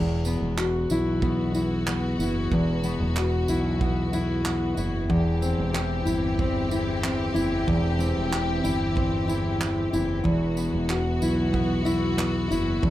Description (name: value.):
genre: acoustic pop.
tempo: 93 BPM.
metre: 4/4.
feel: straight.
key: E minor.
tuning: A4 = 440 Hz.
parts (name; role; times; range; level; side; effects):
fingerpicked steel-string acoustic guitar; accompaniment; 0.0-12.9 s; E2 to G4; -25 LUFS; left 1 dB; none.
warm studio string section; sustained chords; 0.0-12.9 s; E3 to G4; -32 LUFS; equal; none.
fretless electric bass; bass; 0.0-12.9 s; E1 to B1; -29 LUFS; right 1 dB; none.
natural country drum kit; drums; 0.2-12.9 s; handclaps, kick drum, tambourine; -31 LUFS; right 3 dB; none.
room: light reverb.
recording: none.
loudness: -22 LUFS.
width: side -14 dB against mid.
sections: 0.0-12.9 A section.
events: none.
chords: 0.0 Esus2; 5.1 C/E; 10.2 Esus2.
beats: 0.57 1.22 1.86 | 2.51 3.15 3.80 4.45 | 5.09 5.74 6.38 7.02 | 7.67 8.31 8.96 9.60 | 10.25 10.89 11.54 12.18 | 12.83.